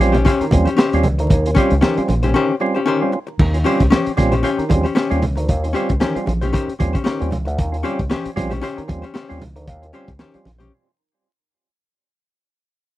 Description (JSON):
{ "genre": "funk", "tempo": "115 BPM", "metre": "4/4", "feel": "swing 56% on 16ths", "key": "Eb mixolydian", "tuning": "A4 = 439 Hz", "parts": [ { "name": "archtop guitar, miked and amplified", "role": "accompaniment", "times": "0.0-10.7 s", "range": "Db4 to C5", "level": "-20 LUFS", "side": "left 4 dB", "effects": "none" }, { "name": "percussive tonewheel organ", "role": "stabs", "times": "0.0-10.5 s", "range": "Eb3 to F4", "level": "-22 LUFS", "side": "right 3 dB", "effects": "overdrive, stopped rotary speaker, tape echo" }, { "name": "fingered electric bass with an envelope filter", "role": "bass", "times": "0.0-10.7 s", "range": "Bb1 to Eb2", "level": "-20 LUFS", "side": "equal", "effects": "tube saturation" }, { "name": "crunchy breakbeat drum kit", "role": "drums", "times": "0.0-10.7 s", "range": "crash cymbal, hi-hat, kick drum, snare drum", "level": "-18 LUFS", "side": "equal", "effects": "none" }, { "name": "congas", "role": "percussion", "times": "0.1-10.7 s", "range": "none", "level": "-26 LUFS", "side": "right 2 dB", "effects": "none" } ], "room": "little or no reverb", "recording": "dry, close 1970s-style studio recording, vinyl crackle", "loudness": "-15 LUFS", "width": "side -15 dB against mid", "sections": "0.0-3.4 A section; 3.4-11.8 B section", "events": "break 2.4-3.4, 10.7-11.8; fade-out 3.4-11.8", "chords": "0.0 Eb13", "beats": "0.26 0.79 | 1.31 1.83 2.36 2.88 | 3.40 3.92 4.45 4.97 | 5.49 6.01 6.54 7.06 | 7.58 8.10 8.63 9.15 | 9.67 10.19 10.72" }